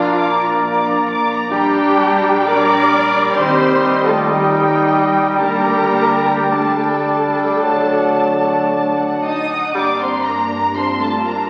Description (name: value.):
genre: classical, slow romantic movement for symphony orchestra.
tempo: 52-70 BPM.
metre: 4/4.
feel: rubato.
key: G minor.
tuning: A4 = 440 Hz.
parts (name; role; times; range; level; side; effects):
warm studio violin section; melody; 0.0-11.5 s; Eb5 to Eb6; -27 LUFS; equal; none.
hollow concert flute; second line; 0.0-11.5 s; G5 to Bb5; -25 LUFS; equal; none.
mellow clarinet; second line; 0.0-10.1 s; D4 to D5; -28 LUFS; equal; none.
warm oboe; second line; 0.0-10.1 s; D5 to G5; -28 LUFS; equal; none.
warm studio violin section; second line; 0.0-11.5 s; A4 to D6; -27 LUFS; equal; none.
warm bassoon; accompaniment; 0.0-10.1 s; F#3 to Bb3; -23 LUFS; equal; none.
warm studio viola section; accompaniment; 0.0-11.5 s; Bb3 to D5; -23 LUFS; equal; none.
mellow French horn section; sustained chords; 0.0-11.5 s; F#3 to Eb4; -26 LUFS; equal; none.
dark trumpet section; stabs; 0.0-9.2 s; D4 to Bb4; -24 LUFS; equal; none.
rich studio cello section; bass; 0.0-11.5 s; F3 to Eb4; -28 LUFS; equal; none.
rich studio double bass section; bass; 0.0-11.5 s; Bb1 to G2; -32 LUFS; equal; none.
room: wet concert hall reverb, RT60 1.9 s.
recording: very old 78 rpm record, vinyl crackle.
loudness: -16 LUFS.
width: mono.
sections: 0.0-9.7 A section; 9.7-11.5 B section.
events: none.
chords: 0.0 Bb; 1.5 Gm/Bb; 3.4 Cm/Eb; 5.4 Dsus4; 7.6 D; 9.7 Gm.